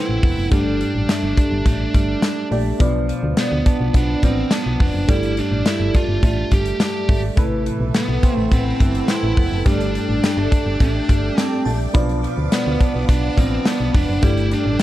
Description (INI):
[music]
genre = 1980s-style pop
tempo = 105 BPM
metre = 4/4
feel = straight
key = unclear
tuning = A4 = 440 Hz
[part]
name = biting lead guitar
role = melody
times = 0.0-14.8 s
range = B3 to G4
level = -23 LUFS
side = equal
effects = overdrive, digital delay
[part]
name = FM electric piano with soft pad layer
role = accompaniment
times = 0.0-14.8 s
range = G2 to D5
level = -25 LUFS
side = left 1 dB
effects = chorus
[part]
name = direct-recorded clean electric guitar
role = riff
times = 0.0-14.8 s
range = E3 to D4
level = -28 LUFS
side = right 6 dB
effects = analog chorus
[part]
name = solid FM bass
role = bass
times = 0.1-14.8 s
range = F1 to D2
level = -22 LUFS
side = equal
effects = none
[part]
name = modern studio drum kit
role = drums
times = 0.2-14.8 s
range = hi-hat, kick drum, snare drum, tambourine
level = -18 LUFS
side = equal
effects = none
[part]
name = string machine, violins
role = sustained chords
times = 7.4-14.8 s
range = A4 to D6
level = -31 LUFS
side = equal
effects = ensemble chorus
[part]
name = glassy synth bell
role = second line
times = 11.4-12.3 s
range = G5 to B5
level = -33 LUFS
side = right 1 dB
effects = chorus, digital delay
[sound]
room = studio reverb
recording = dark, warm production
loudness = -16 LUFS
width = side -15 dB against mid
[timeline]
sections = 0.0-14.8 A section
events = none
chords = 0.0 Amadd9; 0.5 Gsus2; 2.8 Bdim; 5.1 Gsus2; 7.4 Amadd9; 9.7 Gsus2; 11.9 Bdim; 14.2 Gsus2